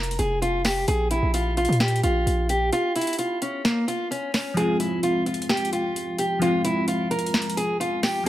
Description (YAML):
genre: hip hop, trap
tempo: 130 BPM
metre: 4/4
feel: half-time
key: F harmonic minor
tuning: A4 = 440 Hz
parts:
  - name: picked steel-string acoustic guitar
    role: melody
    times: 0.0-8.3 s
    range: Bb3 to Bb4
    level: -24 LUFS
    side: equal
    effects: low-pass filter
  - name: hard-hitting 808-style bass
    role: bass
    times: 0.0-2.7 s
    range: F1 to Bb2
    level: -24 LUFS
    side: equal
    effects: none
  - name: trap drum kit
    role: drums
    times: 0.0-8.3 s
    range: finger snaps, hi-hat, snare drum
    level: -27 LUFS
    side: equal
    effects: overdrive
  - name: glassy digital keys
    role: accompaniment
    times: 4.5-8.3 s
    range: F3 to F4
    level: -26 LUFS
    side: left 1 dB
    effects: chorus, low-pass filter
room: light reverb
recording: vinyl crackle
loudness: -21 LUFS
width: side -14 dB against mid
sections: 0.0-8.3 A section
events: break 2.7-4.6; kick muted 4.6-8.3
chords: 0.0 Fm; 0.9 Bb5; 4.6 Fm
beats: 0.42 | 0.88 1.34 1.80 2.26 | 2.73 3.19 3.65 4.11 | 4.57 5.03 5.50 5.96 | 6.42 6.88 7.34 7.80 | 8.26